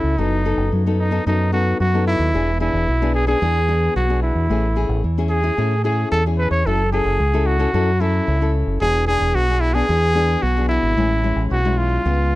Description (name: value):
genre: samba and choro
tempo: 111 BPM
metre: 4/4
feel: straight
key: A major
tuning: A4 = 439 Hz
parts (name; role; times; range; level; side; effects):
- warm trumpet; melody; 0.0-12.4 s; D#4 to C#5; -21 LUFS; equal; tape echo
- nylon-string guitar; accompaniment; 0.0-12.4 s; A2 to A4; -24 LUFS; left 4 dB; none
- deep dub fingered electric bass; bass; 0.0-12.4 s; E1 to A2; -19 LUFS; right 1 dB; none
room: little or no reverb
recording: dry, close 1970s-style studio recording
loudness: -16 LUFS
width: side -17 dB against mid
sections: 0.0-12.4 A section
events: none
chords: 0.2 B7/F#; 2.3 E7; 4.5 Amaj7; 6.7 F#m7; 8.8 E7; 11.0 Amaj7